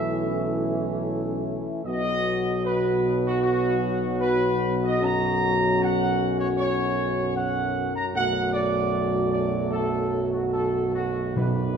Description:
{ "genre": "classical", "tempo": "76 BPM", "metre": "4/4", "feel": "straight", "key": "unclear", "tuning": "A4 = 440 Hz", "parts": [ { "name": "dark trumpet section", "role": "melody", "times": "0.0-11.8 s", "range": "F#4 to A#5", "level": "-27 LUFS", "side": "right 2 dB", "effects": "none" }, { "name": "dark trombone section", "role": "sustained chords", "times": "0.0-11.8 s", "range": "F#2 to A3", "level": "-29 LUFS", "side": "right 2 dB", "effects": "none" }, { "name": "mellow French horn section", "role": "sustained chords", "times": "0.0-11.8 s", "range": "A3 to F#4", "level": "-27 LUFS", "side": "left 4 dB", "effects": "none" }, { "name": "warm tuba", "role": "bass", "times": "0.0-11.8 s", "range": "B1", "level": "-28 LUFS", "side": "right 3 dB", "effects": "none" }, { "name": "timpani", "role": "percussion", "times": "11.4-11.8 s", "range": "B2", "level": "-26 LUFS", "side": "right 1 dB", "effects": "none" } ], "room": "moderate scoring stage reverb, RT60 1.6 s", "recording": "minimal, uncompressed stereo recording", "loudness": "-22 LUFS", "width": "side -7 dB against mid", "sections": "0.0-11.8 A section", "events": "none", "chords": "0.0 A/B; 1.9 B; 5.0 F#/B; 8.1 D/B" }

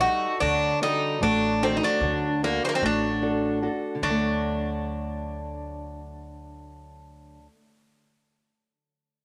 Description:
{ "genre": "greek folk, Greek bouzouki band", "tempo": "150 BPM (eighths)", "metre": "9/8", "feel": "straight", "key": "D major", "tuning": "A4 = 440 Hz", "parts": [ { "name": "Greek bouzouki", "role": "melody", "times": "0.0-7.5 s", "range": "Bb3 to F#4", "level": "-28 LUFS", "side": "equal", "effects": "cassette tape" }, { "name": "Greek bouzouki", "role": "second line", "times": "0.0-7.5 s", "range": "D3 to A3", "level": "-38 LUFS", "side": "equal", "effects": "cassette tape" }, { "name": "fingerpicked steel-string acoustic guitar", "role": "accompaniment", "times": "0.0-7.5 s", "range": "D3 to D5", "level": "-31 LUFS", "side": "equal", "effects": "cassette tape" }, { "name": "upright bass", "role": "bass", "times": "0.0-7.5 s", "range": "A1 to D2", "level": "-37 LUFS", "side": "equal", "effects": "none" } ], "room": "light reverb, studio reverb", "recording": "home recording on cassette", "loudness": "-25 LUFS", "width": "mono", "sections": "0.0-4.0 A section; 4.0-7.6 B section", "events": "none", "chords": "0.4 D" }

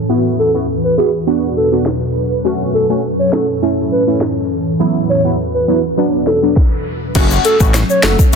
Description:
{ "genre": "dancehall", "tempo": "102 BPM", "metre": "4/4", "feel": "straight", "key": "F# minor", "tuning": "A4 = 439 Hz", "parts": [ { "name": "ethereal airy pad", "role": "sustained chords", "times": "0.0-8.4 s", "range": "E3 to B4", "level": "-18 LUFS", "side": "equal", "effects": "ensemble chorus, built-in reverb, sidechain pumping" }, { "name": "synth brass stab", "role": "accompaniment", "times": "0.1-8.4 s", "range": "F#3 to F#4", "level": "-17 LUFS", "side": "right 1 dB", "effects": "chorus, phaser, sidechain pumping" }, { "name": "hollow clarinet-like synth lead", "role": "melody", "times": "0.4-8.2 s", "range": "G#4 to C#5", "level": "-17 LUFS", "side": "equal", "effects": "chorus, tape echo" }, { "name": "afro-pop drum kit", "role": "drums", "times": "1.9-8.4 s", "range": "crash cymbal, handclaps, hi-hat, kick drum, rim click, snare drum", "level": "-14 LUFS", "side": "equal", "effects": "none" }, { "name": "fat analog bass", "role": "bass", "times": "7.2-8.4 s", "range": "F#1 to A1", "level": "-16 LUFS", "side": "equal", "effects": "none" }, { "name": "tube shaker", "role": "percussion", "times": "7.2-8.4 s", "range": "none", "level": "-26 LUFS", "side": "left 14 dB", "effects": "none" } ], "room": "light reverb", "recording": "dense, heavily limited modern master, low-pass filter", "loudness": "-12 LUFS", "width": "side -5 dB against mid", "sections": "0.0-7.2 A section; 7.2-8.4 B section", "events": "filter sweep 0.0-7.2; stop 6.6-7.2", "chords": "0.1 Esus2; 1.3 Bm; 2.4 F#m; 3.6 A; 4.8 Esus2; 6.0 Bm; 7.2 F#m" }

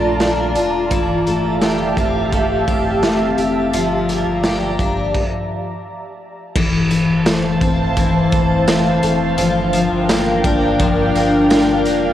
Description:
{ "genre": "dream pop", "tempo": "85 BPM", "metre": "4/4", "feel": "straight", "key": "F major", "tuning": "A4 = 439 Hz", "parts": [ { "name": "ethereal airy pad", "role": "sustained chords", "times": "0.0-12.1 s", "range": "E3 to Bb5", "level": "-18 LUFS", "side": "right 1 dB", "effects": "ensemble chorus, built-in reverb, cassette tape" }, { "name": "picked twelve-string acoustic guitar", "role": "arpeggios", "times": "0.0-12.1 s", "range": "E3 to G4", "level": "-19 LUFS", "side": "left 3 dB", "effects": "wide subtle chorus, cassette tape, analog delay" }, { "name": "warm sub bass", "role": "bass", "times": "0.0-12.1 s", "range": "E1 to Bb1", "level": "-28 LUFS", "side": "right 1 dB", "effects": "none" }, { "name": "raw garage drum kit", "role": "drums", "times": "0.2-12.0 s", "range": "crash cymbal, hi-hat, kick drum, snare drum, tambourine", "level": "-20 LUFS", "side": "right 1 dB", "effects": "cassette tape" } ], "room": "wet lush hall reverb, RT60 2.7 s", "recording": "home recording on cassette", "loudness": "-14 LUFS", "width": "side -11 dB against mid", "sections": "0.0-6.6 A section; 6.6-12.1 B section", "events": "stop 5.1-6.6", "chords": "0.0 Bbmaj7; 0.9 Fmaj9; 3.7 Gm7; 6.6 Fmaj7; 9.4 Gm7" }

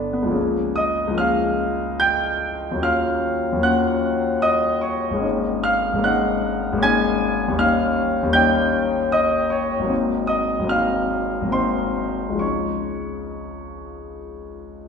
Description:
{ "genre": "classical, impressionist solo piano", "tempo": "62-79 BPM", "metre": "3/4", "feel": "rubato", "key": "Db major", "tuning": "A4 = 441 Hz", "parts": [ { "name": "clear concert grand piano", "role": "solo", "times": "0.0-14.9 s", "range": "G1 to Ab6", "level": "-19 LUFS", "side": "left 1 dB", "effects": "none" } ], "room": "wet scoring stage reverb, RT60 1.8 s", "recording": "heard from further back in the room", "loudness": "-18 LUFS", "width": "side -6 dB against mid", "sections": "0.3-14.9 A section", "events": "none", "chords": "0.3 Db6; 2.8 Ebm9; 5.2 Ab11; 9.9 Ab13; 12.4 Dbadd9" }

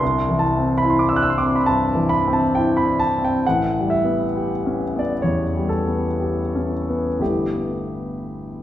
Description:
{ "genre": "classical, impressionist solo piano", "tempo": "56-73 BPM", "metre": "4/4", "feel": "rubato", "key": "unclear", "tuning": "A4 = 440 Hz", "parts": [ { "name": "warm concert grand piano", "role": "solo", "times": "0.0-8.6 s", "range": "G1 to F#6", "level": "-18 LUFS", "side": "equal", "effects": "none" } ], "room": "wet recital hall reverb, RT60 1.5 s", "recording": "heard from further back in the room", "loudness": "-18 LUFS", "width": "side -12 dB against mid", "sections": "0.0-8.6 A section", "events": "none", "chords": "0.0 Cadd9; 3.4 A9; 7.2 G69" }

